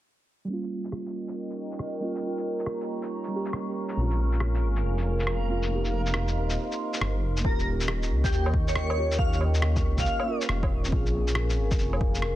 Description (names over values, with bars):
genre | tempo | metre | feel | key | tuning
future garage | 138 BPM | 4/4 | swing 65% on 16ths | unclear | A4 = 440 Hz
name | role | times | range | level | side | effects
muted felt-like synth keys | accompaniment | 0.4-12.4 s | G3 to Bb4 | -33 LUFS | right 2 dB | chorus, sidechain pumping, tape echo
dark analog pad | sustained chords | 1.2-12.4 s | Bb4 to Db6 | -35 LUFS | equal | chorus, phaser, sidechain pumping
backwards swelling texture | texture | 1.3-7.5 s | Bb4 | -41 LUFS | right 3 dB | built-in reverb
electronic shaker, rim click and woodblock | drums | 0.6-12.3 s | none | -33 LUFS | equal | vintage 12-bit sampler grit, studio reverb, soft clipping on snare
dark detuned saw bass | bass | 4.0-12.4 s | Eb1 to Eb2 | -26 LUFS | equal | sidechain pumping
airy dreamy lead | melody | 7.4-10.4 s | G4 to F5 | -32 LUFS | equal | chorus, phaser, tape echo
electronic kick drum | drums | 7.4-12.1 s | none | -27 LUFS | equal | vintage 12-bit sampler grit, studio reverb
room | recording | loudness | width
little or no reverb | dense, heavily limited modern master, cassette tape, low-pass filter | -25 LUFS | side -14 dB against mid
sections
0.5-7.4 A section; 7.4-12.4 B section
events
filter sweep 0.5-7.4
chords
0.5 Eb7; 4.0 Bbm7; 5.7 F7sus4; 7.4 Eb7; 10.9 Bbm7